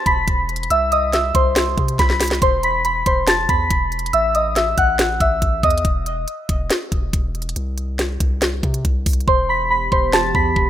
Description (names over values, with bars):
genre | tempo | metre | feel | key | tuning
hip hop, trap | 140 BPM | 4/4 | half-time | E harmonic minor | A4 = 441 Hz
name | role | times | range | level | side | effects
soft synth bell | melody | 0.0-5.8, 9.3-10.7 s | C5 to B6 | -18 LUFS | equal | chorus, low-pass filter, tape echo
long sustained 808-style bass | bass | 0.1-10.7 s | E1 to C3 | -24 LUFS | equal | none
trap drum kit | drums | 0.1-10.7 s | hi-hat, kick drum, snare drum | -20 LUFS | equal | none
warbly tape-like pad | sustained chords | 9.7-10.7 s | E3 to G4 | -26 LUFS | right 2 dB | chorus, built-in reverb
room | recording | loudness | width
light reverb, digital ambience | rough home demo mix | -16 LUFS | side -11 dB against mid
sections
0.0-10.7 A section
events
drum fill 2.0-2.4; break 5.8-9.3; hi-hats muted 9.3-10.7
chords
0.0 E5; 0.7 C; 2.4 E5; 4.1 A5; 5.8 N.C.; 9.3 Em